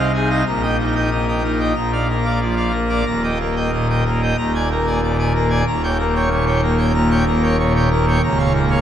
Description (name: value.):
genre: classical, organ toccata.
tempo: 93 BPM.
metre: 4/4.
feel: straight.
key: Eb major.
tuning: A4 = 439 Hz.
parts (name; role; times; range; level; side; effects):
pipe organ, full organ; solo; 0.0-8.8 s; Db1 to Bb5; -16 LUFS; equal; none.
room: wet church reverb, RT60 3.6 s.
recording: none.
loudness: -16 LUFS.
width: side -10 dB against mid.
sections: 0.0-8.8 A section.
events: none.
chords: 0.5 Eb/Bb; 1.8 Bb; 3.1 Eb; 4.4 Bb7/Eb; 5.7 Eb7; 8.2 Bbm/Db.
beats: | 0.47 1.13 1.79 2.44 | 3.09 3.74 4.39 5.03 | 5.67 6.32 6.96 7.59 | 8.23.